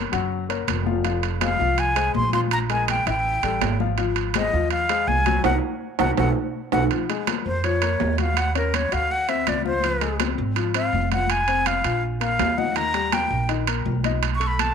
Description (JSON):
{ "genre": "Afro-Cuban jazz", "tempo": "164 BPM", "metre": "4/4", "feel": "straight", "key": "Bb minor", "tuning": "A4 = 441 Hz", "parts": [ { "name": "warm upright piano", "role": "accompaniment", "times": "0.0-14.7 s", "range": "Eb3 to Gb5", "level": "-28 LUFS", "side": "left 12 dB", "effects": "none" }, { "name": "upright bass", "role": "bass", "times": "0.0-14.7 s", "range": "F1 to F2", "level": "-26 LUFS", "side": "right 2 dB", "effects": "none" }, { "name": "timbales", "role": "percussion", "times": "0.1-14.7 s", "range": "none", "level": "-27 LUFS", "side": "right 19 dB", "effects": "none" }, { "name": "congas", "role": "percussion", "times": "0.3-14.7 s", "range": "none", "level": "-30 LUFS", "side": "left 14 dB", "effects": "none" }, { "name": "breathy concert flute", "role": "melody", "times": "1.4-14.7 s", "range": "Bb4 to Db6", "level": "-24 LUFS", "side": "left 1 dB", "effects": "none" } ], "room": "light reverb, studio reverb", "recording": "1960s-style stereo with parts hard left and right", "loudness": "-20 LUFS", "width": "side -7 dB against mid", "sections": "0.0-6.9 A section; 6.9-14.7 B section", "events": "band accent 5.4-6.9; flute solo 6.9-14.7", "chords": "0.3 Gb; 1.1 Fm; 2.5 Bb5; 3.2 A5; 4.0 Ab6; 5.4 Gb; 6.2 B5; 6.9 Bbm7; 8.4 Ebm7; 9.1 D7; 9.8 Dbmaj7; 11.3 Fm; 12.0 Bb5; 12.8 Eb; 14.2 B7" }